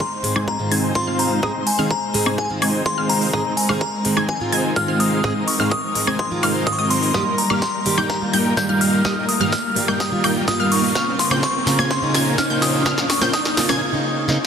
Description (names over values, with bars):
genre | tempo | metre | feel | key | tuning
EDM, festival progressive house | 126 BPM | 4/4 | straight | Ab major | A4 = 441 Hz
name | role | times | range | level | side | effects
glassy synth bell | melody | 0.0-13.8 s | Ab5 to G6 | -24 LUFS | left 1 dB | chorus, dub echo
muted studio string section | sustained chords | 0.0-13.8 s | Db3 to C5 | -28 LUFS | left 1 dB | sidechain pumping
electronic kick drum | drums | 0.0-13.4 s | none | -27 LUFS | equal | overdrive, high-pass filter on kick, small room ambience
riser | sound effects | 0.0-13.8 s | none | -31 LUFS | right 1 dB | none
picked plugged-in steel-string acoustic guitar | accompaniment | 0.2-14.4 s | G2 to C5 | -24 LUFS | right 2 dB | sidechain pumping
big-room dance drum kit | drums | 0.2-14.4 s | hi-hat, snare drum, woodblock | -24 LUFS | left 1 dB | overdrive, high-pass filter on hats, small room ambience, high-pass filter on perc, high-pass filter on snare
wide unison pluck | arpeggios | 0.4-13.8 s | Eb6 to Ab6 | -28 LUFS | equal | sidechain pumping, dub echo
dense compressed supersaw | riff | 0.4-13.8 s | G3 to Ab5 | -24 LUFS | equal | sidechain pumping, low-pass filter
room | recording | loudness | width
moderate huge ambient reverb, RT60 6.5 s | dense, heavily limited modern master | -17 LUFS | side -7 dB against mid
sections
0.0-14.5 A section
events
build-up 0.0-14.5; filter sweep on supersaw synth 0.0-14.5; drum fill 7.1-13.8, 14.3; break 13.8-14.5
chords
0.0 Ab; 7.1 Eb/G; 11.0 Bbmadd9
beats
0.00 0.48 0.95 | 1.43 1.91 2.38 2.86 | 3.33 3.81 4.29 4.76 | 5.24 5.71 6.19 6.67 | 7.14 7.62 8.10 8.57 | 9.05 9.53 10.00 10.48 | 10.95 11.43 11.91 12.38 | 12.86 13.34 13.81 14.29